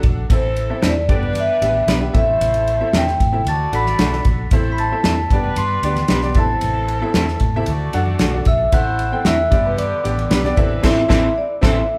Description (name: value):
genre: uptempo 1960s-style soul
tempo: 114 BPM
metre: 4/4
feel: straight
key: A dorian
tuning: A4 = 440 Hz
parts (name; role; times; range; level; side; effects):
- clear horn section; second line; 0.0-11.8 s; D3 to D5; -32 LUFS; equal; none
- clear upright piano; accompaniment; 0.0-11.8 s; A3 to G5; -28 LUFS; equal; none
- vintage muted fingered electric bass; bass; 0.0-11.8 s; A1 to A2; -25 LUFS; equal; none
- natural country drum kit; drums; 0.0-11.8 s; crash cymbal, kick drum, ride cymbal, snare drum; -21 LUFS; equal; none
- congas; percussion; 0.0-10.7 s; none; -34 LUFS; equal; none
- vibraphone with soft mallets; melody; 0.3-12.0 s; B4 to C6; -23 LUFS; equal; none
- electric guitar through a small old amp; stabs; 0.8-11.8 s; A3 to C5; -27 LUFS; equal; none
- glockenspiel with soft plastic mallets; second line; 3.5-10.8 s; B5 to C7; -34 LUFS; equal; none
room: moderate large studio reverb, RT60 1.1 s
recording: band playing live in one room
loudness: -17 LUFS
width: mono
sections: 0.0-12.0 A section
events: band accent 10.8-12.0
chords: 0.3 Am; 1.1 G; 2.1 Am; 3.5 D; 4.5 Am; 5.3 G; 6.4 Am; 7.7 D; 8.7 Am; 9.5 G; 10.6 Am